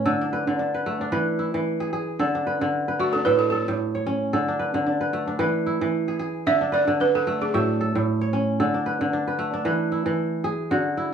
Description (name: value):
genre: west african traditional, West African string and xylophone music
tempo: 112 BPM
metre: 4/4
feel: swing 56% on 16ths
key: D lydian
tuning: A4 = 440 Hz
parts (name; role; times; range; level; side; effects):
- kora; arpeggios; 0.0-11.1 s; A2 to E5; -22 LUFS; equal; none
- balafon; melody; 3.0-8.3 s; F#4 to E5; -22 LUFS; right 3 dB; none
room: moderate studio reverb, RT60 0.6 s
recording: small room ambience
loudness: -21 LUFS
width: side -7 dB against mid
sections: 0.0-10.7 A section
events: none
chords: 0.1 D5; 1.1 E; 2.2 D5; 3.3 A; 4.3 D5; 5.4 E; 6.5 D5; 7.5 A; 8.6 D5; 9.7 E